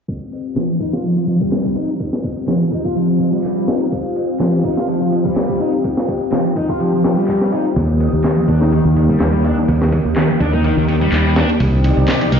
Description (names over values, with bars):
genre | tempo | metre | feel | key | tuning
breakbeat, breaks | 125 BPM | 4/4 | swing 54% on 16ths | unclear | A4 = 442 Hz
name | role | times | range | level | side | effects
lush unison pad | sustained chords | 0.1-12.4 s | Eb3 to Eb6 | -20 LUFS | left 1 dB | chorus, sidechain pumping
breakbeat sampler-style drum kit | drums | 0.1-12.4 s | kick drum, ride cymbal, snare drum | -22 LUFS | equal | high-pass filter on kick, high-pass filter on cymbals, high-pass filter on snare
thick fuzz guitar | riff | 0.6-12.4 s | C3 to F4 | -19 LUFS | equal | distortion, tube saturation, low-pass filter, tape echo
electronic handclaps | drums | 0.6-12.2 s | none | -28 LUFS | equal | overdrive
fingered electric bass | bass | 7.8-12.4 s | C2 to Eb2 | -15 LUFS | right 1 dB | tube saturation
room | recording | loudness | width
light reverb | played on a big sound system in a bare room, large studio reverb, low-pass filter, nothing above 7.5 kHz | -14 LUFS | side -7 dB against mid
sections
0.1-12.4 A section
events
filter sweep on distorted electric guitar 0.1-12.4; filter sweep on analog synth pad 0.1-12.4; filter sweep 0.1-12.4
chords
0.1 Fsus2; 7.8 Eb; 11.6 Cmadd9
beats
| 0.08 0.56 1.04 1.52 | 2.00 2.48 2.96 3.44 | 3.92 4.40 4.88 5.36 | 5.84 6.32 6.80 7.28 | 7.76 8.24 8.72 9.20 | 9.68 10.16 10.64 11.12 | 11.60 12.08